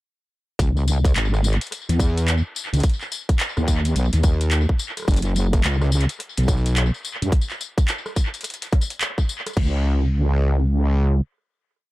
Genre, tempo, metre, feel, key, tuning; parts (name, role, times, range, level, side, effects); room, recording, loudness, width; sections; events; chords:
glitch hop; 107 BPM; 4/4; swing 62% on 16ths; C# minor; A4 = 440 Hz
wobble bass; bass; 0.6-11.2 s; F#1 to F#2; -18 LUFS; equal; chorus, overdrive
drum and bass drum kit; drums; 0.6-9.7 s; crash cymbal, handclaps, hi-hat, rim click, tambourine; -27 LUFS; left 1 dB; tape echo
electronic kick drum; drums; 0.6-9.7 s; -19 LUFS; equal
little or no reverb; echo-heavy mix; -19 LUFS; side -18 dB against mid
0.6-9.6 drop; 9.6-11.8 final note
drop 0.6-9.6